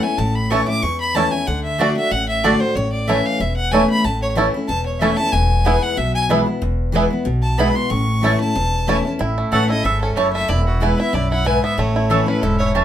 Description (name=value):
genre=bluegrass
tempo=186 BPM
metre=4/4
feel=swing 53% on 8ths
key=A major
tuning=A4 = 440 Hz
part: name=rich fiddle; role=melody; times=0.0-12.7 s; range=F#4 to D6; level=-22 LUFS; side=left 1 dB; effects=none
part: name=picked steel-string acoustic guitar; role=accompaniment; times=0.0-12.8 s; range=E2 to F#4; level=-21 LUFS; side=left 2 dB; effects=none
part: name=upright bass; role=bass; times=0.2-12.8 s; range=E1 to E2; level=-22 LUFS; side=equal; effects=none
part: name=bluegrass banjo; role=arpeggios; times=0.5-12.8 s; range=A3 to A4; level=-23 LUFS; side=right 3 dB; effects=none
part: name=mandolin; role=stabs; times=0.5-12.8 s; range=A3 to A5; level=-20 LUFS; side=right 3 dB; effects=none
room=light reverb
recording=minimal, uncompressed stereo recording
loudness=-16 LUFS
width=side -10 dB against mid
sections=0.0-9.2 A section; 9.2-12.8 B section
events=fiddle solo 0.0-9.2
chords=0.0 A; 1.5 D; 2.8 A; 5.3 E; 7.9 A; 10.5 E; 11.8 A